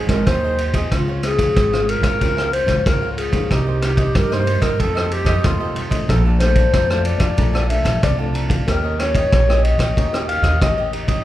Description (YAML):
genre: samba and choro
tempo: 93 BPM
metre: 4/4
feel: straight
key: Bb dorian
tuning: A4 = 440 Hz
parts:
  - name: breathy hollow jazz flute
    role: second line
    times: 0.0-5.9 s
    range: F4 to C5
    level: -23 LUFS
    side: right 3 dB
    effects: none
  - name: cavaquinho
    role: accompaniment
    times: 0.0-11.2 s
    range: Eb4 to A5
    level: -30 LUFS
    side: right 3 dB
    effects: none
  - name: nylon-string guitar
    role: accompaniment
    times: 0.0-11.2 s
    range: F2 to G4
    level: -28 LUFS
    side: left 3 dB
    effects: none
  - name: upright bass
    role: bass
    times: 0.0-11.2 s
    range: Ab1 to G2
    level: -20 LUFS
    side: equal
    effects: none
  - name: vintage drum kit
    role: drums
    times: 0.1-11.2 s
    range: kick drum, ride cymbal, rim click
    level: -20 LUFS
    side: equal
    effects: none
  - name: breathy clarinet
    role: melody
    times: 0.9-10.9 s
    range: F4 to F5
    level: -21 LUFS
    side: left 2 dB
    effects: none
room: moderate large studio reverb, RT60 1.3 s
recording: band playing live in one room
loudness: -15 LUFS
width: side -14 dB against mid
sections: 0.0-11.2 A section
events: none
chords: 0.0 Ab7; 0.9 Dbmaj7; 3.5 Cm7; 4.8 F7; 6.1 Bbmaj7; 8.7 Eb7